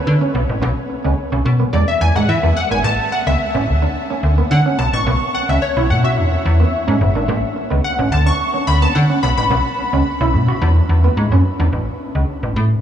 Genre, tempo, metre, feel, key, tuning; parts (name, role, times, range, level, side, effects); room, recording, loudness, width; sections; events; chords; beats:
funk; 108 BPM; 4/4; straight; A4 = 440 Hz
funky polysynth comp; accompaniment; 0.0-10.7 s; B4 to C#6; -20 LUFS; left 2 dB; chorus
clean electric guitar; riff; 0.1-11.7 s; G#3 to F#4; -22 LUFS; right 3 dB; lush chorus
slap-like FM bass; bass; 0.1-12.8 s; F#1 to E3; -15 LUFS; equal
moderate huge ambient reverb, RT60 7.3 s; dreamy mix soaked in reverb, small room reverb; -14 LUFS; side -9 dB against mid
0.0-11.7 A section; 11.7-12.8 B section
analog polysynth solo 0.0-11.7
0.3 Bsus2; 1.7 E; 2.8 Aadd9; 3.7 Dmaj7; 4.8 B9sus4; 6.2 E7; 7.3 Aadd9; 8.1 Dmaj7; 9.2 Bsus2; 10.6 E7(no3); 11.7 N.C.
0.06 | 0.62 1.18 1.73 2.29 | 2.84 3.40 3.95 4.51 | 5.06 5.62 6.18 6.73 | 7.29 7.84 8.40 8.95 | 9.51 10.06 10.62 11.18 | 11.73 12.29